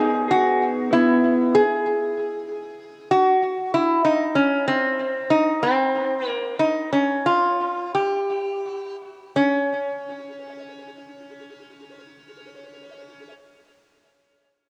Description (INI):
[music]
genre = dream pop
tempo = 82-96 BPM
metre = 4/4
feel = straight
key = unclear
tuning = A4 = 444 Hz
[part]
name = metal-body resonator slide guitar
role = melody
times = 0.0-13.3 s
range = C4 to G#4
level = -22 LUFS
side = equal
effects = cassette tape, tape echo
[part]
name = electric guitar through a small old amp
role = arpeggios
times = 0.0-2.1 s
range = B3 to G#4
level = -24 LUFS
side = equal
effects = lush chorus, tape echo
[sound]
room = wet spring reverb, RT60 2.2 s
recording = home recording on cassette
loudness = -21 LUFS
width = mono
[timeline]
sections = 0.0-9.3 A section; 9.3-12.3 B section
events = slowing down 4.0-9.3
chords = 0.0 Emaj7; 4.0 N.C.